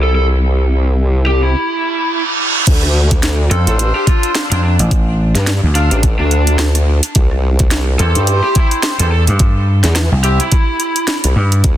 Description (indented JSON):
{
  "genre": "glitch hop",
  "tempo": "107 BPM",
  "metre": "4/4",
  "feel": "swing 58% on 16ths",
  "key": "unclear",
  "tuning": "A4 = 440 Hz",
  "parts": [
    { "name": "lead guitar through a small cranked amp", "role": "melody", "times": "0.0-11.2 s", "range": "D4 to A4", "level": "-20 LUFS", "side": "equal", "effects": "overdrive, digital delay" },
    { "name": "formant-sweep wobble bass", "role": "bass", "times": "0.0-11.8 s", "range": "A1 to G2", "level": "-13 LUFS", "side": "equal", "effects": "chorus, overdrive" },
    { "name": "reverse cymbal", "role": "sound effects", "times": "1.8-2.7 s", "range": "none", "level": "-18 LUFS", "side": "right 4 dB", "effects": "none" },
    { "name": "drum and bass drum kit", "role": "drums", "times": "2.7-11.8 s", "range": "crash cymbal, hi-hat, rim click, snare drum", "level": "-19 LUFS", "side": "right 1 dB", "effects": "overdrive" },
    { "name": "electronic kick drum", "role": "drums", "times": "2.7-11.8 s", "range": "none", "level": "-12 LUFS", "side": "equal", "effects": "overdrive" },
    { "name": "bright horn section", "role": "stabs", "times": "3.5-10.4 s", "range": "C4 to F5", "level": "-22 LUFS", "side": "equal", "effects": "sidechain pumping, digital delay" },
    { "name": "vintage slap bass", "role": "bass", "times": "3.5-11.6 s", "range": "A1 to G2", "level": "-12 LUFS", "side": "equal", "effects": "tube saturation" }
  ],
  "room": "little or no reverb",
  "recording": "dense, heavily limited modern master",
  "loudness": "-11 LUFS",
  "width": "side -12 dB against mid",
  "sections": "0.0-2.7 A section; 2.7-11.8 B section",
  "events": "break 1.5-2.7; reverse cymbal 1.8-2.7; drop 2.7-11.8",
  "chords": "0.0 C; 2.7 Dm7; 7.2 C",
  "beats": "| 0.43 0.99 1.55 2.11 | 2.67 3.23 3.79 4.35 | 4.91 5.47 6.03 6.59 | 7.16 7.71 8.28 8.84 | 9.40 9.96 10.52 11.08 | 11.64"
}